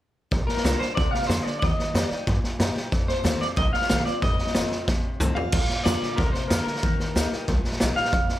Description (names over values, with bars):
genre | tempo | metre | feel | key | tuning
rockabilly | 184 BPM | 4/4 | straight | Bb major | A4 = 443 Hz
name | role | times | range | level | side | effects
picked steel-string acoustic guitar | accompaniment | 0.3-8.4 s | F2 to G4 | -32 LUFS | left 3 dB | none
upright bass | bass | 0.3-8.3 s | F1 to G2 | -28 LUFS | equal | none
raw garage drum kit | drums | 0.3-8.3 s | crash cymbal, hi-hat, kick drum, snare drum, toms | -24 LUFS | equal | none
electric guitar through a small old amp | melody | 0.5-8.4 s | Bb4 to F5 | -28 LUFS | equal | lush chorus, tape echo
room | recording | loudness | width
little or no reverb | none | -22 LUFS | side -14 dB against mid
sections
0.3-5.5 A section; 5.5-8.4 B section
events
drum fill 4.9-5.5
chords
0.3 Bb; 1.6 Eb; 2.9 F7; 5.5 Bb; 6.8 Eb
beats
| 0.32 0.64 0.97 1.29 | 1.62 1.94 2.27 2.60 | 2.92 3.25 3.57 3.90 | 4.22 4.55 4.88 5.20 | 5.53 5.85 6.18 6.51 | 6.83 7.16 7.48 7.81 | 8.14